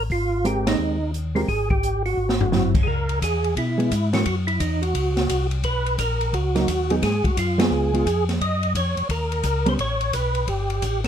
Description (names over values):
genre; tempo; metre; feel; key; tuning
soul jazz organ trio; 174 BPM; 4/4; swing 64% on 8ths; unclear; A4 = 440 Hz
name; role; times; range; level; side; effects
percussive tonewheel organ; melody; 0.0-11.1 s; Eb4 to Eb5; -24 LUFS; right 2 dB; slow rotary speaker, chorus vibrato
mellow tonewheel organ; bass; 0.0-11.1 s; G1 to Cb3; -24 LUFS; left 1 dB; chorus vibrato, slow rotary speaker
open jazz drum kit; drums; 0.1-11.1 s; crash cymbal, hi-hat, kick drum, ride cymbal, snare drum, toms; -26 LUFS; equal; none
hollow-body jazz guitar; accompaniment; 0.4-4.2, 6.6-9.8 s; Fb3 to Bb4; -24 LUFS; right 2 dB; none
room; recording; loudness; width
light reverb; dark, warm production, faint mains hum; -20 LUFS; side -9 dB against mid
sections
0.0-2.9 A section; 2.9-11.1 B section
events
band accent 0.6, 7.5; drum fill 2.2-2.5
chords
0.1 Abmaj9; 2.2 Abaug7; 2.9 Dbm7; 4.3 Gb5; 5.6 Bmaj7; 7.0 Abm7; 7.7 Db7; 8.4 Gbmaj7; 9.8 A9